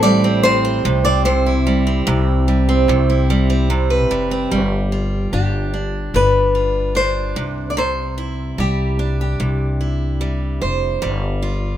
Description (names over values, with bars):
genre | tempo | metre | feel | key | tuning
acoustic pop | 74 BPM | 4/4 | straight | C major | A4 = 440 Hz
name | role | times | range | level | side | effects
nylon-string guitar | melody | 0.0-10.6 s | G4 to D5 | -19 LUFS | left 2 dB | none
picked steel-string acoustic guitar | accompaniment | 0.0-11.8 s | A2 to C5 | -19 LUFS | right 3 dB | none
upright bass | bass | 0.0-11.8 s | F1 to C2 | -19 LUFS | left 1 dB | none
room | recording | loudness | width
light reverb | minimal, uncompressed stereo recording | -15 LUFS | side -11 dB against mid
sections
0.0-4.5 A section; 4.5-11.8 B section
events
none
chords
0.0 Am7; 0.8 Cmaj7; 4.5 G7; 7.4 Cadd9; 11.0 G7(no3)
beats
0.44 | 1.26 2.07 2.88 3.70 | 4.51 5.33 6.14 6.95 | 7.77 8.58 9.40 10.21 | 11.02